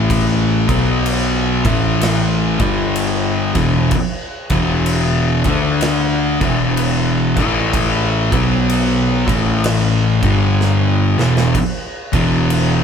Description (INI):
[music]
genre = stoner and doom metal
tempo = 63 BPM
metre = 4/4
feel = swing 62% on 8ths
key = E minor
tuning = A4 = 442 Hz
[part]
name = thick fuzz guitar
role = riff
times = 0.0-12.8 s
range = E2 to D4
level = -16 LUFS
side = left 6 dB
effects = distortion
[part]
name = thick fuzz guitar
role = riff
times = 0.0-12.8 s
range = E2 to D4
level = -20 LUFS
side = right 9 dB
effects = distortion
[part]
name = fuzz picked electric bass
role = bass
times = 0.0-12.8 s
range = E1 to D2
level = -21 LUFS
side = right 1 dB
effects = overdrive
[part]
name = big rock drum kit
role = drums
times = 0.1-12.8 s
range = crash cymbal, kick drum, snare drum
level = -22 LUFS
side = right 1 dB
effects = none
[sound]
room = light reverb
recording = band playing live in one room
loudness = -13 LUFS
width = side -7 dB against mid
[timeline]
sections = 0.0-12.8 A section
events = drum fill 10.6-11.5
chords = 0.0 A5; 0.6 B5; 1.5 A5; 2.5 G5; 3.4 E5; 5.3 D5; 6.3 E5; 7.3 A5; 8.2 B5; 9.2 A5; 10.1 G5; 11.1 E5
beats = | 0.10 1.05 2.01 2.96 | 3.92 4.87 5.83 6.78 | 7.73 8.69 9.64 10.59 | 11.54 12.50